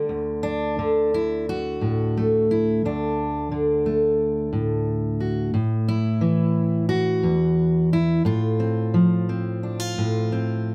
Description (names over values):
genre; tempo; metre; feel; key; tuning
folk, solo fingerstyle acoustic guitar; 88 BPM; 4/4; rubato; unclear; A4 = 442 Hz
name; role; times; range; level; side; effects
fingerpicked steel-string acoustic guitar; solo; 0.0-10.7 s; D2 to F#4; -22 LUFS; equal; none
room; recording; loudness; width
light reverb; close, detailed microphones; -22 LUFS; mono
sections
0.1-10.7 A section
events
none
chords
0.1 D; 5.5 A5; 8.3 F/A